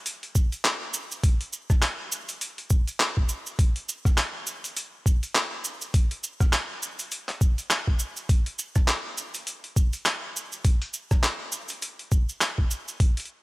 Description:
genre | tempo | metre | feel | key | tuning
glitch hop | 102 BPM | 4/4 | swing 58% on 16ths | none | none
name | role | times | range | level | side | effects
boom bap sampler-style drum kit | drums | 0.1-13.3 s | handclaps, hi-hat, rim click | -28 LUFS | equal | overdrive
cabasa | percussion | 0.1-13.0 s | none | -33 LUFS | right 2 dB | none
electronic kick drum | drums | 0.4-13.1 s | none | -21 LUFS | equal | overdrive
room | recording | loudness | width
little or no reverb | dry, gritty hardware recording | -24 LUFS | side -21 dB against mid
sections
0.0-13.4 A section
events
none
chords
none

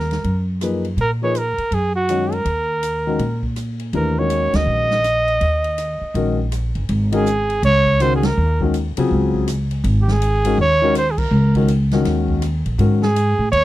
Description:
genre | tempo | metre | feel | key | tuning
modal jazz | 162 BPM | 4/4 | swing 63% on 8ths | Eb minor | A4 = 438 Hz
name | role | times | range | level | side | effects
warm trumpet | melody | 0.0-13.6 s | Gb4 to Eb5 | -19 LUFS | right 2 dB | none
upright bass | bass | 0.0-13.6 s | G1 to Bb2 | -19 LUFS | equal | none
swinging big-band drum kit | drums | 0.0-13.6 s | crash cymbal, hi-hat, kick drum, ride cymbal, rim click, snare drum | -30 LUFS | equal | none
warm concert grand piano | accompaniment | 0.6-13.0 s | C#3 to Db5 | -21 LUFS | left 4 dB | none
room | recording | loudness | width
little or no reverb | dry, close 1970s-style studio recording | -16 LUFS | side -15 dB against mid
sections
0.0-6.9 A section; 6.9-13.6 B section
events
band accent 4.5, 8.2, 11.1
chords
0.0 Ebm11; 6.9 G#9sus4

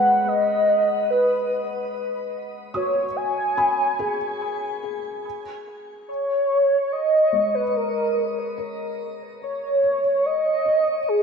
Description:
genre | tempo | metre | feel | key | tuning
ambient | 72 BPM | 4/4 | straight | unclear | A4 = 441 Hz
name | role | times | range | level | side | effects
warm velvety synth lead | melody | 0.0-11.2 s | G#4 to G#5 | -20 LUFS | equal | chorus, shimmer reverb, ping-pong delay
felt-muted upright piano | arpeggios | 0.0-11.2 s | G#3 to D#6 | -33 LUFS | left 1 dB | wide subtle chorus, shimmer reverb, ping-pong delay
room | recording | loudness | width
wet plate reverb, RT60 2.8 s | dreamy mix soaked in reverb, cassette tape | -20 LUFS | side -6 dB against mid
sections
0.0-11.2 A section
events
fade-out on felt piano 0.0-11.2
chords
0.0 G#m7; 5.2 G#sus4

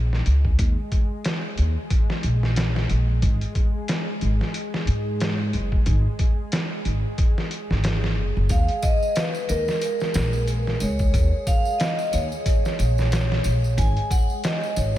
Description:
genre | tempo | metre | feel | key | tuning
trip hop | 91 BPM | 4/4 | swing 57% on 16ths | Eb minor | A4 = 440 Hz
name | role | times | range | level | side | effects
upright bass | bass | 0.0-14.9 s | Gb1 to Ab2 | -22 LUFS | equal | tube saturation
bowed-like drone | texture | 0.0-15.0 s | Ab3 to Ab4 | -34 LUFS | equal | built-in reverb
trip hop sampler-style drum kit | drums | 0.1-14.9 s | hi-hat, kick drum, snare drum | -24 LUFS | equal | vintage 12-bit sampler grit
vibraphone with medium hard mallets | melody | 8.5-15.0 s | Bb4 to Ab5 | -26 LUFS | equal | tape echo
tambourine | percussion | 8.5-15.0 s | none | -40 LUFS | right 2 dB | none
room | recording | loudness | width
light reverb, small room ambience | none | -20 LUFS | side -13 dB against mid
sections
0.0-15.0 A section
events
none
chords
0.0 N.C.; 8.5 Eb5; 13.8 Gbsus2

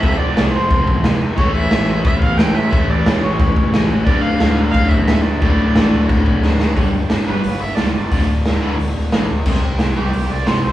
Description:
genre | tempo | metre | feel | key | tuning
punk rock | 178 BPM | 4/4 | straight | D minor | A4 = 439 Hz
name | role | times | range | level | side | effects
rich erhu | melody | 0.0-10.7 s | G4 to G5 | -23 LUFS | right 2 dB | none
distorted electric guitar | riff | 0.0-10.7 s | D2 to C5 | -25 LUFS | equal | distortion
overdriven electric guitar | riff | 0.0-10.6 s | D2 to C4 | -20 LUFS | left 1 dB | none
growling picked electric bass | bass | 0.0-10.7 s | D1 to A2 | -21 LUFS | equal | overdrive
raw garage drum kit | drums | 0.0-10.6 s | crash cymbal, hi-hat, kick drum, snare drum | -16 LUFS | equal | none
room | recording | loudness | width
light reverb | band playing live in one room, small room ambience | -13 LUFS | side -14 dB against mid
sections
0.0-6.8 A section; 6.8-10.7 B section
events
drum fill 6.4-6.8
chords
0.0 F; 1.4 A; 4.1 Dm; 6.8 G; 8.1 Dm; 9.5 C

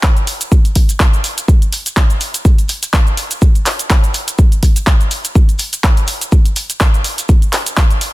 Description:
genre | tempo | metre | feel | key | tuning
house | 124 BPM | 4/4 | swing 56% on 16ths | none | none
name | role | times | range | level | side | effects
electronic kick drum | drums | 0.0-7.9 s | none | -10 LUFS | equal | studio ambience
punchy analog drum machine | drums | 0.0-8.1 s | handclaps, hi-hat, shaker | -18 LUFS | equal | sidechain pumping on hats, studio ambience, sidechain pumping on perc
maracas | percussion | 0.0-8.1 s | none | -26 LUFS | equal | sidechain pumping on perc
room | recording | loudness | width
little or no reverb | dense, heavily limited modern master | -11 LUFS | side -19 dB against mid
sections
0.0-8.1 A section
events
none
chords
none

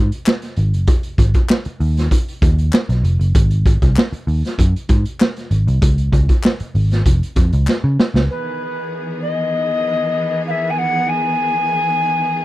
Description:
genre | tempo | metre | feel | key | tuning
funk | 97 BPM | 4/4 | straight | unclear | A4 = 439 Hz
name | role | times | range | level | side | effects
vintage muted picked electric bass | bass | 0.0-8.3 s | F1 to Db3 | -15 LUFS | equal | none
raw garage drum kit | drums | 0.1-8.3 s | hi-hat, kick drum, snare drum | -15 LUFS | equal | none
group handclap | percussion | 0.3-7.8 s | none | -26 LUFS | left 5 dB | none
mellow alto recorder | melody | 8.3-12.4 s | B4 to G#5 | -18 LUFS | left 2 dB | none
rich studio string section | sustained chords | 8.3-12.4 s | D#3 to G#4 | -23 LUFS | equal | none
room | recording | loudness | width
little or no reverb | none | -14 LUFS | side -16 dB against mid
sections
0.0-8.3 A section; 8.3-12.4 B section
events
drum fill 7.7-8.3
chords
0.0 Ab7(no3); 5.8 Db; 8.3 Emaj7

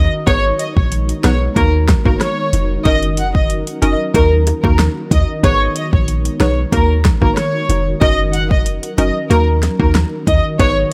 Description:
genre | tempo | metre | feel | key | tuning
dancehall | 93 BPM | 4/4 | straight | unclear | A4 = 440 Hz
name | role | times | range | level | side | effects
warm studio violin section | melody | 0.0-10.7 s | A#4 to F#5 | -21 LUFS | equal | digital delay
ethereal airy pad | sustained chords | 0.0-10.9 s | D#4 to A#4 | -27 LUFS | equal | ensemble chorus, built-in reverb, sidechain pumping
clean 808-style bass | bass | 0.0-10.8 s | E#1 to D#2 | -18 LUFS | equal | none
hollow square pluck | accompaniment | 0.3-10.9 s | A#3 to B4 | -23 LUFS | equal | chorus, sidechain pumping
deep house drum kit | drums | 0.3-10.8 s | hi-hat, kick drum, rim click, snare drum | -19 LUFS | equal | none
bongos | percussion | 0.3-10.8 s | none | -30 LUFS | equal | none
room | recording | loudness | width
little or no reverb | none | -15 LUFS | mono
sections
0.0-10.9 A section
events
none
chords
0.3 G#m; 1.6 D#m; 2.9 F#6; 4.1 D#m; 5.4 G#m; 6.7 D#m; 8.0 F#6; 9.3 D#m

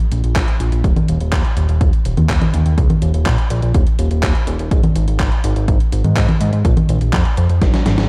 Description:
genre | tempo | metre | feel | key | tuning
italo disco | 124 BPM | 4/4 | straight | unclear | A4 = 441 Hz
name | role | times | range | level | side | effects
gated 80s digital drum machine | drums | 0.0-8.1 s | congas, handclaps, hi-hat, snare drum | -22 LUFS | equal | gated reverb, gated reverb snare, overdrive
fat analog bass | bass | 0.1-8.1 s | Eb1 to Ab2 | -19 LUFS | equal | tube saturation
electronic kick drum | drums | 0.4-7.7 s | none | -19 LUFS | equal | none
room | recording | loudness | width
little or no reverb | dark, warm production, vinyl crackle | -16 LUFS | mono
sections
0.0-8.1 A section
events
drum fill 7.6-8.1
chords
none

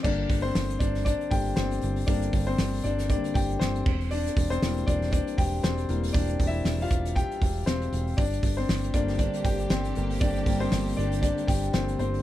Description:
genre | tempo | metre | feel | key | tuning
piano-driven pop | 118 BPM | 4/4 | swing 56% on 16ths | unclear | A4 = 440 Hz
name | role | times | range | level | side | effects
warm concert grand piano | accompaniment | 0.0-12.2 s | D3 to G5 | -28 LUFS | left 3 dB | none
picked electric bass | bass | 0.0-12.2 s | E1 to G1 | -29 LUFS | right 1 dB | none
loose indie drum kit | drums | 0.0-12.2 s | crash cymbal, hi-hat, kick drum, snare drum | -28 LUFS | equal | none
warm studio string section | sustained chords | 8.2-12.2 s | D3 to G4 | -36 LUFS | right 6 dB | none
room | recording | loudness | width
little or no reverb | none | -24 LUFS | side -13 dB against mid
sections
0.0-12.2 A section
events
grand piano solo 0.0-12.2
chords
0.0 Gm; 3.9 Edim; 8.2 Gm

